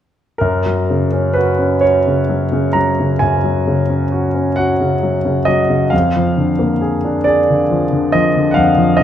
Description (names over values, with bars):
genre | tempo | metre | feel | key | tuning
classical, romantic nocturne for solo piano | 41-47 BPM (dotted quarters) | 12/8 | rubato | F# major | A4 = 440 Hz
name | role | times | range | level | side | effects
clear grand piano | solo | 0.4-9.0 s | E#2 to A#5 | -12 LUFS | equal | none
room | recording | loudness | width
moderate recital hall reverb, RT60 1.6 s | none | -13 LUFS | side -10 dB against mid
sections
0.4-9.0 A section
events
none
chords
0.4 F#; 5.9 A#7/E#